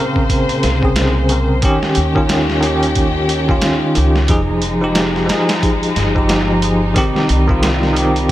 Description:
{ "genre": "trip hop", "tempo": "90 BPM", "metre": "4/4", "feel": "swing 59% on 16ths", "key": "F minor", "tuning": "A4 = 435 Hz", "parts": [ { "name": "bell-like tine electric piano", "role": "accompaniment", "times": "0.0-8.3 s", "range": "Db3 to Bb4", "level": "-16 LUFS", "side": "equal", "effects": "tremolo, tape echo" }, { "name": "dark studio string section", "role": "sustained chords", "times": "0.0-8.3 s", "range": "Bb2 to C5", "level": "-21 LUFS", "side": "left 1 dB", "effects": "none" }, { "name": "trip hop sampler-style drum kit", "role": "drums", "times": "0.2-8.3 s", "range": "hi-hat, kick drum, snare drum", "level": "-18 LUFS", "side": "equal", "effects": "none" }, { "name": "upright bass", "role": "bass", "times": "0.6-8.3 s", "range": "F1 to Eb2", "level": "-18 LUFS", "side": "equal", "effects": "none" } ], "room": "light reverb, digital ambience", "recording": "none", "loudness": "-12 LUFS", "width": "side -14 dB against mid", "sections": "0.0-8.3 A section", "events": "none", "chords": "0.0 Bbmadd9; 1.6 Eb7; 4.3 Fm7; 7.0 Cm" }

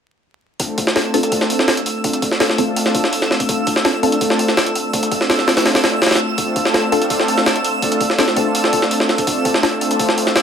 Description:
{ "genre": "drum and bass, jungle", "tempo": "166 BPM", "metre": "4/4", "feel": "straight", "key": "D minor", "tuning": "A4 = 441 Hz", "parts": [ { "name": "lush unison pad", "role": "sustained chords", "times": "0.6-10.4 s", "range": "A3 to A4", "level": "-19 LUFS", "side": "equal", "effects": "chorus" }, { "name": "jungle sampler-style drum kit", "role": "drums", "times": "0.6-10.4 s", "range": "hi-hat, kick drum, snare drum", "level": "-17 LUFS", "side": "equal", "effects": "high-pass filter on hats, studio reverb, high-pass filter on kick, high-pass filter on snare" }, { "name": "twinkling granular texture", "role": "texture", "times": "1.0-10.4 s", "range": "E6", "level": "-24 LUFS", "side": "right 3 dB", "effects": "built-in reverb" }, { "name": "filtered dub chord stab", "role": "stabs", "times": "1.0-9.8 s", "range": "C4 to A4", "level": "-22 LUFS", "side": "left 1 dB", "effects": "phaser, dub echo" } ], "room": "moderate plate reverb, RT60 1.6 s", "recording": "vinyl crackle", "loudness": "-14 LUFS", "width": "side -7 dB against mid", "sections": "0.6-10.4 A section", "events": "none", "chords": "0.6 Dm7" }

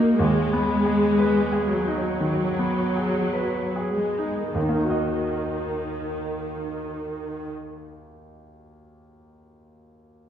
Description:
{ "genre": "classical", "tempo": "48-63 BPM", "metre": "4/4", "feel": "rubato", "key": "Eb minor", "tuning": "A4 = 439 Hz", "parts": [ { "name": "bright concert grand piano", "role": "melody", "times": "0.0-10.3 s", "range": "Eb2 to Eb5", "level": "-26 LUFS", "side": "equal", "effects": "none" }, { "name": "warm studio viola section", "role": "accompaniment", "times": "0.0-7.5 s", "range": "Eb3 to Bb3", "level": "-24 LUFS", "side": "equal", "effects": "none" } ], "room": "wet recital hall reverb, RT60 1.6 s", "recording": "heard from further back in the room", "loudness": "-22 LUFS", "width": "side -9 dB against mid", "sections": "0.0-4.5 A section; 4.5-8.9 B section", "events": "slowing down 0.0-4.5", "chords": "0.2 Abm/Eb; 4.5 Ebm" }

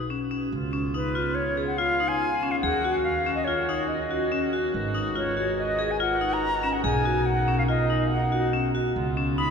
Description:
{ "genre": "contemporary instrumental, chamber music in an uneven meter", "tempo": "142 BPM", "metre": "5/4", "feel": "straight", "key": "unclear", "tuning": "A4 = 441 Hz", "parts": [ { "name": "bright reedy silver concert flute", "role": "melody", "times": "0.0-9.5 s", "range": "B4 to B5", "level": "-28 LUFS", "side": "left 1 dB", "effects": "none" }, { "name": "upright bass", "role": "bass", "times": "0.0-9.5 s", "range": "G#1 to D#2", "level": "-30 LUFS", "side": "right 2 dB", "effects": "none" }, { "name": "vibraphone with hard mallets", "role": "arpeggios", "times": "0.1-9.5 s", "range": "C#4 to G#4", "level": "-27 LUFS", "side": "left 2 dB", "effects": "none" }, { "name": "warm woodwind section", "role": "sustained chords", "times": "0.5-9.5 s", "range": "C#3 to B4", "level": "-34 LUFS", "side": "right 2 dB", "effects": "none" } ], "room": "wet cathedral reverb, RT60 6.6 s", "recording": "recorded in a church or concert hall", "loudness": "-23 LUFS", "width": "side -6 dB against mid", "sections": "0.5-9.5 A section", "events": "none", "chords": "0.0 Bsus2; 0.5 C#7; 2.6 D#m7; 4.7 G#m9; 6.8 Bmaj7; 8.9 C#7" }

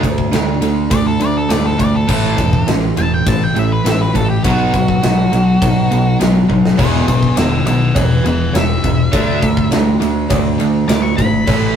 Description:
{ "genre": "classic rock", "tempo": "102 BPM", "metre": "4/4", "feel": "straight", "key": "unclear", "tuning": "A4 = 440 Hz", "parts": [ { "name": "picked steel-string acoustic guitar", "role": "accompaniment", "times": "0.0-11.8 s", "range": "E2 to G#4", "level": "-27 LUFS", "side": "left 3 dB", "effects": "none" }, { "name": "distorted electric guitar", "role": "riff", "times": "0.0-11.8 s", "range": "E2 to D4", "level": "-20 LUFS", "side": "left 5 dB", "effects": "distortion" }, { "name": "raw garage guitar", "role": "riff", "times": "0.0-11.8 s", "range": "E2 to D4", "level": "-17 LUFS", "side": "right 5 dB", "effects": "overdrive" }, { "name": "overdriven picked electric bass", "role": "bass", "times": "0.0-11.7 s", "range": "E1 to D2", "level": "-19 LUFS", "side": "equal", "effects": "none" }, { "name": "big rock drum kit", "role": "drums", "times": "0.0-11.6 s", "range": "crash cymbal, kick drum, ride cymbal, snare drum", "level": "-18 LUFS", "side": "left 1 dB", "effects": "none" }, { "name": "octave-fuzz lead guitar", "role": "melody", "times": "0.9-11.8 s", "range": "F#4 to D6", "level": "-20 LUFS", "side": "left 1 dB", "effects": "distortion" }, { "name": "cowbell", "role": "percussion", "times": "6.8-11.6 s", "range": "none", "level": "-26 LUFS", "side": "equal", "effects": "none" } ], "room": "light reverb", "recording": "rough rehearsal-room recording", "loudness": "-12 LUFS", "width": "side -8 dB against mid", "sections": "0.0-11.8 A section", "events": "lead electric guitar solo 0.0-11.8; drum fill 6.5", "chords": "0.0 D; 2.1 A; 4.4 B; 6.8 E; 9.1 D" }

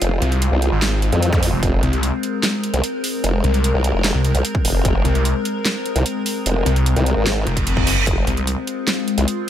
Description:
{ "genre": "heavy wobble dubstep", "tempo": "149 BPM", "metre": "4/4", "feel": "half-time", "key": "F minor", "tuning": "A4 = 439 Hz", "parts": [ { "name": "evolving wavetable pad", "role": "sustained chords", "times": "0.0-9.5 s", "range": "Ab3 to Bb4", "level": "-23 LUFS", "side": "left 3 dB", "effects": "chorus, built-in reverb, phaser, sidechain pumping" }, { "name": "formant-sweep wobble bass", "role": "bass", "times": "0.0-9.3 s", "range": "F1 to F2", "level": "-18 LUFS", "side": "equal", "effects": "chorus, overdrive" }, { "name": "dubstep drum kit", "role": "drums", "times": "0.0-9.4 s", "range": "handclaps, hi-hat, snare drum", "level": "-23 LUFS", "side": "right 2 dB", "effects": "small room ambience" }, { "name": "snarling distorted saw bass", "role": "bass", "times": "0.2-8.6 s", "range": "F1 to C2", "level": "-18 LUFS", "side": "equal", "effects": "overdrive" }, { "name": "electronic kick drum", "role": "drums", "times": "1.3-1.7, 4.5-4.9, 7.6-8.2 s", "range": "none", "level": "-20 LUFS", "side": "equal", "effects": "small room ambience" }, { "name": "zap and reverse cymbal", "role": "sound effects", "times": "1.3-1.4, 7.5-8.1 s", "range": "none", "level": "-25 LUFS", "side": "right 4 dB", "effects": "none" } ], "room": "little or no reverb", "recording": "none", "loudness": "-16 LUFS", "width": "side -10 dB against mid", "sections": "0.0-9.5 A section", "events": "reverse cymbal 7.5-8.1", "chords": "0.0 Fm" }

